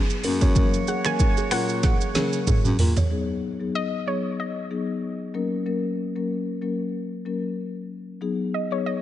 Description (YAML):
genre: afrobeats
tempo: 94 BPM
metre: 4/4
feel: swing 55% on 16ths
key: F# major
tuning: A4 = 440 Hz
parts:
  - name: breathy baritone saxophone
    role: bass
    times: 0.0-2.9 s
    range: F#2 to C#3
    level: -27 LUFS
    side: equal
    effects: none
  - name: afro-pop drum kit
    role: drums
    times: 0.1-3.1 s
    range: finger snaps, hi-hat, kick drum, rim click, shaker, snare drum, toms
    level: -22 LUFS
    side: equal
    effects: none
  - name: warm horn section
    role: second line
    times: 0.2-2.8 s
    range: A#3 to C#5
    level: -33 LUFS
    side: right 6 dB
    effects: diffuse ambient delay
  - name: marimba with soft mallets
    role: accompaniment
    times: 0.2-8.9 s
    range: F#3 to A#4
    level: -27 LUFS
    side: left 4 dB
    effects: none
  - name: kalimba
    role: riff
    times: 0.2-3.0 s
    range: G#4 to C#5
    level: -33 LUFS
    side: right 5 dB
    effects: diffuse ambient delay
  - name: bongos and congas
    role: percussion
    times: 0.4-3.1 s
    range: none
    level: -32 LUFS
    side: right 3 dB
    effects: none
  - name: soft round pluck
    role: melody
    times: 0.9-9.0 s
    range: C#5 to G#5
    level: -30 LUFS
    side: equal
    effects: chorus, diffuse ambient delay
room: light reverb, small room reverb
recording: nothing above 10.5 kHz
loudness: -22 LUFS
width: side -12 dB against mid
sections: 0.0-3.1 A section; 3.1-9.0 B section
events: drum fill 1.8-3.1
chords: 0.2 F#; 3.1 B6; 5.3 F#; 8.2 B6